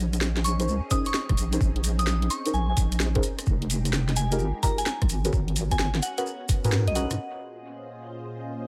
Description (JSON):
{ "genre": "UK garage, two-step garage", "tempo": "129 BPM", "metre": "4/4", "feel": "swing 66% on 16ths", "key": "Bb minor", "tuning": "A4 = 440 Hz", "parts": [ { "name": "soft string machine", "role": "sustained chords", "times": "0.0-8.7 s", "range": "Bb2 to Eb5", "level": "-42 LUFS", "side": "equal", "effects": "phaser, ensemble chorus, sidechain pumping" }, { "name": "deep soft wobble bass", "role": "bass", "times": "0.0-7.2 s", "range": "F1 to Ab2", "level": "-28 LUFS", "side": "equal", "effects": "chorus, sidechain pumping" }, { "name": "garage drum kit", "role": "drums", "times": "0.1-8.6 s", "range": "hi-hat, rim click, snare drum", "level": "-33 LUFS", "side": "equal", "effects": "overdrive, low-pass filter on hats, small room ambience, low-pass filter on snare" }, { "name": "maracas", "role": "percussion", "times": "0.1-7.2 s", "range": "none", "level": "-38 LUFS", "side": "equal", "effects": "none" }, { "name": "soft synth bell", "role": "melody", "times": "0.4-7.2 s", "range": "Eb5 to Eb6", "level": "-35 LUFS", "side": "equal", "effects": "chorus, tape echo" }, { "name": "deep mellow chord stab", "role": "stabs", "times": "0.6-7.1 s", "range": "Db4 to C5", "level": "-34 LUFS", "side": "equal", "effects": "chorus, phaser, tape echo" }, { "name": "electronic kick drum", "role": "drums", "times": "0.9-6.6 s", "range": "none", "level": "-28 LUFS", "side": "equal", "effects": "overdrive, small room ambience" } ], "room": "digital ambience", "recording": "none", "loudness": "-25 LUFS", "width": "mono", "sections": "0.0-7.2 A section; 7.2-8.7 B section", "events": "filter sweep on synth stab 0.0-7.2; kick drops out 6.7-7.2; band accent 6.7", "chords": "0.0 Bbm11; 3.2 Fm11; 5.1 Abm11; 7.2 Bbm11" }